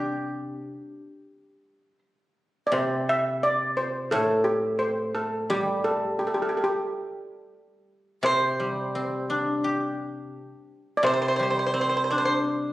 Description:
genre	chinese traditional, Chinese chamber ensemble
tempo	86 BPM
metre	4/4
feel	rubato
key	unclear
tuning	A4 = 440 Hz
part	steel pan	melody	0.0-12.4 s	G4 to E5	-26 LUFS	equal	none
part	pipa	second line	0.0-2.0, 8.3-12.3 s	C5	-25 LUFS	right 2 dB	none
part	guzheng	accompaniment	0.0-12.7 s	A2 to G4	-28 LUFS	left 1 dB	none
room	moderate recital hall reverb, RT60 1.5 s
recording	recorded on a phone in the room, club reverb, compression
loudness	-23 LUFS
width	side -16 dB against mid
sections	0.0-2.7 A section; 2.7-12.7 B section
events	none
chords	none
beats	0.58 1.29 2.02 | 2.75 3.45 4.14 4.84 | 5.52 6.21 6.89 7.57 | 8.26 8.95 9.64 10.35 | 11.05 11.75 12.47

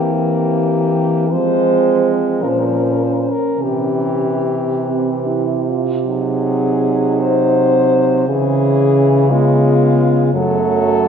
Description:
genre	classical, lyrical piece for horn quartet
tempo	47-60 BPM (dotted quarters)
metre	6/8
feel	rubato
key	unclear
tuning	A4 = 438 Hz
part	warm French horn	melody	0.0-11.1 s	E#4 to B#4	-18 LUFS	left 4 dB	none
part	dark French horn	second line	0.0-11.1 s	A3 to F4	-20 LUFS	right 7 dB	none
part	clear French horn	accompaniment	0.0-11.1 s	E3 to Bb3	-21 LUFS	left 1 dB	none
part	mellow French horn	bass	0.0-11.1 s	F#2 to F3	-18 LUFS	right 1 dB	none
room	wet church reverb, RT60 2.6 s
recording	heard from further back in the room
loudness	-13 LUFS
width	side -7 dB against mid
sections	0.0-11.1 A section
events	none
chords	0.0 C7/E; 1.3 Fm; 2.4 Bbm; 3.6 C; 6.1 G#7/B#; 8.3 C#m; 9.3 C#7; 10.3 F#m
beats	0.14 | 1.30 2.41 | 3.58 4.84 | 6.07 7.20 | 8.28 9.31 | 10.35

